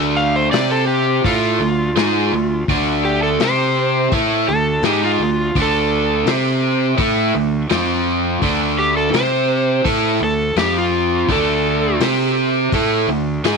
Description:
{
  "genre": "blues rock power trio and southern rock",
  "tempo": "84 BPM",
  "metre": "4/4",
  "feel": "straight",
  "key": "D minor",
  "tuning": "A4 = 441 Hz",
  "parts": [
    { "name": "overdriven electric guitar", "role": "riff", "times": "0.0-13.6 s", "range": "D3 to C5", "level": "-17 LUFS", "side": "right 1 dB", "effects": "none" },
    { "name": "fuzz fingered electric bass", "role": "bass", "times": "0.0-13.6 s", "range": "D2 to C3", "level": "-23 LUFS", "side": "equal", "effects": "overdrive" },
    { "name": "overdriven slide guitar", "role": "melody", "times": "0.2-12.0 s", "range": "F4 to F5", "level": "-20 LUFS", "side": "equal", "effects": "tape echo" },
    { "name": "vintage drum kit", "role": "drums", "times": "0.5-13.6 s", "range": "hi-hat, kick drum, snare drum", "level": "-24 LUFS", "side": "left 5 dB", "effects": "none" }
  ],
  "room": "small room ambience",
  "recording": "1960s-style stereo",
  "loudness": "-14 LUFS",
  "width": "side -4 dB against mid",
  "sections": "0.0-13.6 A section",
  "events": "none",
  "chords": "0.0 D5; 0.5 C5; 1.2 Dm; 3.4 C5; 4.1 D5; 6.3 C5; 7.0 D5; 7.7 F5; 8.4 D5; 9.1 C5; 9.9 D5; 10.6 F5; 11.3 D5; 12.0 C5; 12.7 D5"
}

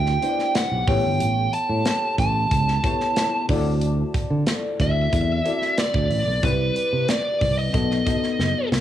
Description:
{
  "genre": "polished 1980s jazz-funk pop",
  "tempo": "92 BPM",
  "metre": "4/4",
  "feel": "straight",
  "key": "unclear",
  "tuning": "A4 = 440 Hz",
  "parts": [
    { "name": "biting lead guitar", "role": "melody", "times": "0.0-8.7 s", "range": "B4 to A5", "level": "-24 LUFS", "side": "right 1 dB", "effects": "overdrive, cassette tape, analog delay" },
    { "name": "bell-like FM electric piano", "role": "accompaniment", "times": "0.0-8.8 s", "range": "B3 to D#5", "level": "-27 LUFS", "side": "left 6 dB", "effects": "lush chorus, cassette tape" },
    { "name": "fingered electric bass", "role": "bass", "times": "0.0-8.8 s", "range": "F#1 to D3", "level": "-23 LUFS", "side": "right 1 dB", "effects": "none" },
    { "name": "modern studio drum kit", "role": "drums", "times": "0.1-8.8 s", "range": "hi-hat, kick drum, snare drum", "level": "-26 LUFS", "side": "right 1 dB", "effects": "cassette tape" }
  ],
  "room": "light reverb, small room ambience",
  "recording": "home recording on cassette",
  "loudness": "-19 LUFS",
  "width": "side -11 dB against mid",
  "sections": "0.0-8.8 A section",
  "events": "drum fill 8.4-8.8",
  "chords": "0.0 Em7; 0.9 A7; 3.5 D7; 6.4 Cmaj7; 7.7 B7"
}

